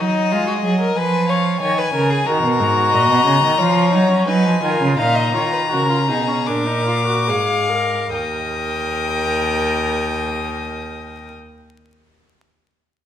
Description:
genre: classical, baroque-style fugue for string quartet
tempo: 70-93 BPM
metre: 4/4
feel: straight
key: unclear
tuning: A4 = 441 Hz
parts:
  - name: warm violin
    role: melody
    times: 0.0-11.3 s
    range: D#5 to Eb6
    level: -22 LUFS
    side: left 6 dB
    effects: none
  - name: rich violin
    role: second line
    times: 0.0-11.3 s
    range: D#4 to G5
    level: -22 LUFS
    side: left 2 dB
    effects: none
  - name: warm cello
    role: bass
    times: 0.0-11.3 s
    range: Eb2 to G#3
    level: -20 LUFS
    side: right 2 dB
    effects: none
  - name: rich viola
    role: accompaniment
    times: 2.3-11.3 s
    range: Db4 to Bb4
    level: -22 LUFS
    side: equal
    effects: none
room: wet recital hall reverb, RT60 1.5 s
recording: minimal, uncompressed stereo recording, vinyl crackle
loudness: -15 LUFS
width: side -10 dB against mid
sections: 0.0-8.1 A section; 8.1-11.6 B section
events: slowing down 1.0-8.1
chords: 0.0 D#madd11; 1.0 Fm7b5; 2.3 Ebm; 3.6 Fdim; 5.0 Bb7sus4; 6.5 Bb7; 8.1 Eb

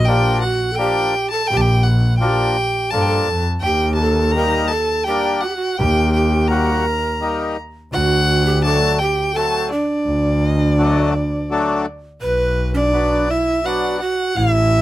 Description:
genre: klezmer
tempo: 84 BPM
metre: 3/4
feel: straight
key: unclear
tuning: A4 = 440 Hz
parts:
  - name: rich violin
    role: melody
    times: 0.0-14.8 s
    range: B4 to Bb5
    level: -20 LUFS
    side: equal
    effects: none
  - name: breathy large pan pipes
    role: second line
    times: 0.0-14.8 s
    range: D4 to B4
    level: -21 LUFS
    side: right 3 dB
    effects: none
  - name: clear double bass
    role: bass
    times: 0.0-14.8 s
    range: A1 to G2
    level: -19 LUFS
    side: equal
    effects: none
  - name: accordion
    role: accompaniment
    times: 0.1-14.0 s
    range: F3 to F#4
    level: -21 LUFS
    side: left 4 dB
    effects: none
room: little or no reverb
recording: close, detailed microphones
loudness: -15 LUFS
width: side -15 dB against mid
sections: 0.0-12.2 A section; 12.2-14.8 B section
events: none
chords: 0.0 Bb; 3.6 Eb; 7.9 D; 12.2 Bm

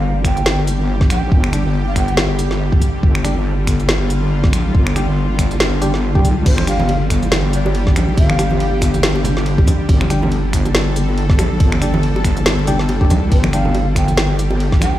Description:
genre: deep dubstep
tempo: 140 BPM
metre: 4/4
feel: swing 57% on 16ths, half-time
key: unclear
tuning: A4 = 439 Hz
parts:
  - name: breathy mellow shakuhachi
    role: melody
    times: 0.0-2.3, 6.5-8.8, 13.3-15.0 s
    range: C5 to G5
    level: -26 LUFS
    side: equal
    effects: dub echo
  - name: bowed-like drone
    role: sustained chords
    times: 0.0-15.0 s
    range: D3 to A4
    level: -23 LUFS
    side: left 1 dB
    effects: built-in reverb
  - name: wobble bass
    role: bass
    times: 0.0-15.0 s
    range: F1 to C2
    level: -17 LUFS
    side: equal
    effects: chorus
  - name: deep house drum kit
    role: drums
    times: 0.2-14.9 s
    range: crash cymbal, finger snaps, hi-hat, ride cymbal, snare drum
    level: -22 LUFS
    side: equal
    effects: small room ambience
  - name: electronic kick drum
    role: drums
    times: 0.2-14.8 s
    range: none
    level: -14 LUFS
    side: equal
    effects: small room ambience
  - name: percussive organ stab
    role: stabs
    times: 1.5-13.6 s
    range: G3 to G4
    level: -27 LUFS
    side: equal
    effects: none
  - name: bongos and congas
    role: percussion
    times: 6.6-15.0 s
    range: none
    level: -23 LUFS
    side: right 1 dB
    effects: dub echo
room: digital ambience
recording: played on a big sound system in a bare room, large studio reverb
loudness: -13 LUFS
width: side -13 dB against mid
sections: 0.0-15.0 A section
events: none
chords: 0.0 G5

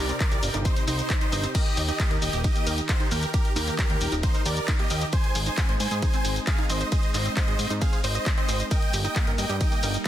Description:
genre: uplifting trance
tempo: 134 BPM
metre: 4/4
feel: straight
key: unclear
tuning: A4 = 440 Hz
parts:
  - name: big supersaw lead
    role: melody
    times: 0.0-10.1 s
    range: Eb4 to Ab5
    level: -30 LUFS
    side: right 1 dB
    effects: sidechain pumping, dub echo
  - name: analog string pad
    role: sustained chords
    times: 0.0-10.1 s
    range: C3 to Bb4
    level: -35 LUFS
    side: left 1 dB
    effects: ensemble chorus, sidechain pumping
  - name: wide unison pluck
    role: arpeggios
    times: 0.0-10.1 s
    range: Bb3 to Eb5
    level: -36 LUFS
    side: right 5 dB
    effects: sidechain pumping, dub echo
  - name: fat analog bass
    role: bass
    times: 0.0-10.0 s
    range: Eb1 to Ab2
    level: -28 LUFS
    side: equal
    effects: sidechain pumping
  - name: punchy analog drum machine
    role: drums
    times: 0.1-10.1 s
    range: crash cymbal, handclaps, hi-hat, ride cymbal, shaker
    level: -30 LUFS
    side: left 1 dB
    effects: none
  - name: electronic kick drum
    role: drums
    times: 0.2-10.1 s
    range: none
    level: -24 LUFS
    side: equal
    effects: overdrive
room: digital ambience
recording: dense, heavily limited modern master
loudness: -22 LUFS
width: side -12 dB against mid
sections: 0.0-10.1 A section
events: none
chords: 0.0 Cm; 1.5 Eb; 5.1 Ab; 8.7 Eb/G

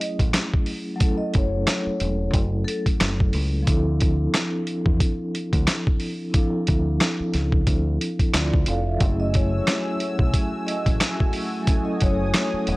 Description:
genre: hip hop, boom-bap hip-hop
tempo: 90 BPM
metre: 4/4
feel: swing 57% on 16ths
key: unclear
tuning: A4 = 440 Hz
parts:
  - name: vibraphone with soft mallets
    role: melody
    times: 0.0-2.8, 9.2-12.8 s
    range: A4 to D#5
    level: -31 LUFS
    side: left 2 dB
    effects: analog delay
  - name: vibraphone with soft mallets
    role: accompaniment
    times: 0.0-12.8 s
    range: F3 to F5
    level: -26 LUFS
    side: equal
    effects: cassette tape
  - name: boom bap sampler-style drum kit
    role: drums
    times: 0.0-12.8 s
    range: hi-hat, kick drum, rim click, snare drum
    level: -21 LUFS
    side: equal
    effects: none
  - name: deep dub fingered electric bass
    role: bass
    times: 0.2-12.8 s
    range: E1 to E2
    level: -24 LUFS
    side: equal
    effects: none
  - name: warm analog pad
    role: sustained chords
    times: 9.0-12.8 s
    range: A3 to E6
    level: -31 LUFS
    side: equal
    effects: chorus
room: little or no reverb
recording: dry, gritty hardware recording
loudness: -20 LUFS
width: side -21 dB against mid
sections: 0.0-12.8 A section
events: none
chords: 0.0 F#m9; 3.7 Dm9; 9.0 F#m9

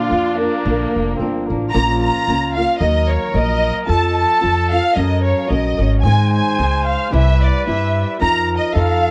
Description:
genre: mexican folk, mariachi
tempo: 111 BPM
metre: 2/4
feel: swing 55% on 8ths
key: Bb minor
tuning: A4 = 440 Hz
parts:
  - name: dark symphonic violin section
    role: melody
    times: 0.0-9.1 s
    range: Bb3 to Bb5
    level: -21 LUFS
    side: equal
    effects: analog delay
  - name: mellow trumpet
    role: second line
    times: 0.0-9.1 s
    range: Bb3 to C5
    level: -27 LUFS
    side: equal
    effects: none
  - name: flamenco guitar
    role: accompaniment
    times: 0.0-9.1 s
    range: Ab2 to Bb4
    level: -24 LUFS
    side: equal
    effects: none
  - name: upright bass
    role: bass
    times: 0.1-9.1 s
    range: F1 to Ab2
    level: -21 LUFS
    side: equal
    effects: none
room: light reverb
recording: cassette tape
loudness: -17 LUFS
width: mono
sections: 0.0-1.7 A section; 1.7-9.1 B section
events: none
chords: 0.0 Bb; 1.7 Bbm; 2.8 Ebm; 3.9 F; 5.0 Gb; 6.0 Ab; 7.1 C; 8.2 F7sus4

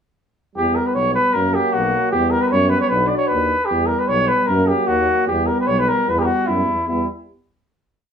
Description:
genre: balkan folk, Balkan brass band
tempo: 152 BPM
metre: 2/4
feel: swing 55% on 16ths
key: E dorian sharp4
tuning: A4 = 444 Hz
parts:
  - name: warm flugelhorn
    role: melody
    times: 0.6-7.1 s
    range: E4 to D5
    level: -18 LUFS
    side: left 1 dB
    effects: none
  - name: warm euphonium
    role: accompaniment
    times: 0.6-7.1 s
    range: A#3 to D4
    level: -24 LUFS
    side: left 1 dB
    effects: none
  - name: warm euphonium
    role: accompaniment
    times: 0.6-7.1 s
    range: F#3 to G3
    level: -27 LUFS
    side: right 4 dB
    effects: none
  - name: warm tuba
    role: bass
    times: 0.6-7.1 s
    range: B1 to F#2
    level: -23 LUFS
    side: right 1 dB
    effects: none
room: wet studio reverb, RT60 0.6 s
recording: band playing live in one room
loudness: -16 LUFS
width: side -7 dB against mid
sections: 0.6-6.9 A section; 6.9-7.7 final chord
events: none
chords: 0.6 Em; 1.4 F#; 2.1 Em; 2.9 Bm; 3.7 Em; 4.5 F#; 5.3 Em

